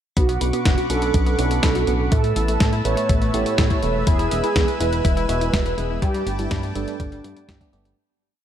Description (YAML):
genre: italo disco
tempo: 123 BPM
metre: 4/4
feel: straight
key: B minor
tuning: A4 = 437 Hz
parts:
  - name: mellow synth brass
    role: melody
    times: 0.2-7.9 s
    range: D4 to C#5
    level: -26 LUFS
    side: right 4 dB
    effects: chorus, cassette tape, digital delay
  - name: lush unison pad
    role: sustained chords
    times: 0.2-8.0 s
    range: B4 to E6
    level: -29 LUFS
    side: left 2 dB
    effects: chorus
  - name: analog pluck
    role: arpeggios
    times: 0.2-7.9 s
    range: G3 to E5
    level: -30 LUFS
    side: left 5 dB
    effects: chorus, tape echo
  - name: chorused synth bass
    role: bass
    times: 0.2-7.9 s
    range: E1 to A2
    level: -24 LUFS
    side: equal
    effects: none
  - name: clean 12-bit digital drum machine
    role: drums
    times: 0.2-8.0 s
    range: hi-hat, snare drum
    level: -28 LUFS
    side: equal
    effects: none
  - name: electronic kick drum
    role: drums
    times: 0.2-7.7 s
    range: none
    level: -21 LUFS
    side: equal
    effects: none
  - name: tine electric piano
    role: stabs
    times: 0.4-8.0 s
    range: G2 to B4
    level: -28 LUFS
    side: right 5 dB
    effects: phaser, low-pass filter
room: light reverb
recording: dark, warm production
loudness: -18 LUFS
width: side -10 dB against mid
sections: 0.2-8.0 verse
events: filter sweep on tine electric piano 0.2-8.0; fade-out 5.4-8.0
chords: 0.2 Bmadd9; 2.1 Asus2; 4.1 E; 6.0 Gadd9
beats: | 0.17 0.66 1.14 1.63 | 2.12 2.61 3.10 3.58 | 4.07 4.56 5.05 5.53 | 6.02 6.51 7.00 7.49